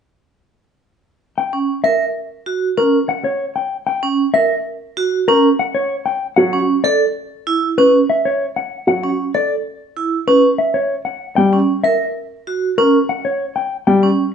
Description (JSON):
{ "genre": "classical, minimalist pattern music", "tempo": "96 BPM", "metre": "4/4", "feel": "straight", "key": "unclear", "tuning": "A4 = 439 Hz", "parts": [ { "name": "mellow electric guitar", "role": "melody", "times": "1.4-14.1 s", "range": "A#4 to G5", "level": "-16 LUFS", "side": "left 3 dB", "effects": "none" }, { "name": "vibraphone with hard mallets", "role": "arpeggios", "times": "1.5-14.2 s", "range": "C#4 to A#4", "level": "-18 LUFS", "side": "right 6 dB", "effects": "none" }, { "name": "warm grand piano", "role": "accompaniment", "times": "6.4-14.1 s", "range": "F#3 to G3", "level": "-15 LUFS", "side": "left 1 dB", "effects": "none" } ], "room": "wet large studio reverb, RT60 0.9 s", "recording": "heard from further back in the room, nothing above 10.3 kHz", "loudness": "-14 LUFS", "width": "side -7 dB against mid", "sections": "1.4-14.3 A section", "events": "none", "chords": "1.4 F#; 6.4 B7sus2 (rootless); 11.4 F#(b9)" }